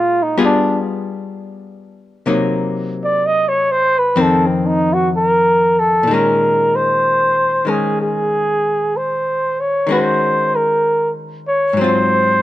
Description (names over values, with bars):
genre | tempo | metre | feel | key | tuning
jazz ballad | 63 BPM | 4/4 | swing 67% on 8ths | Bb minor | A4 = 439 Hz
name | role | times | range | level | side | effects
mellow flugelhorn | melody | 0.0-12.4 s | C4 to Eb5 | -14 LUFS | right 1 dB | none
archtop guitar, miked and amplified | accompaniment | 0.0-12.4 s | F2 to Ab4 | -19 LUFS | left 3 dB | none
room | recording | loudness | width
light reverb | close, detailed microphones | -13 LUFS | side -14 dB against mid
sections
0.0-6.1 A section; 6.1-12.4 B section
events
flugelhorn solo 0.0-6.1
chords
0.4 G7b9; 2.3 Cm7b5; 4.2 F5; 6.1 Bbm11; 9.9 Ebm7; 11.7 Ab6